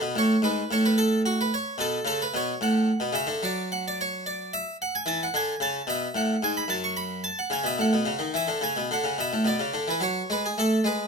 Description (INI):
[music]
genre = classical, baroque-style suite movement for harpsichord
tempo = 73 BPM (dotted quarters)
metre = 12/8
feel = rubato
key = F# minor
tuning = A4 = 439 Hz
[part]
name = harpsichord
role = solo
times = 0.0-11.1 s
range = F#2 to C#6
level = -24 LUFS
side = equal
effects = none
[sound]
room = light reverb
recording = close, detailed microphones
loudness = -24 LUFS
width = side -5 dB against mid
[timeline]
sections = 0.0-11.1 A section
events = none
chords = 0.1 F#m; 6.7 B7/F#; 8.3 E5; 10.0 F#m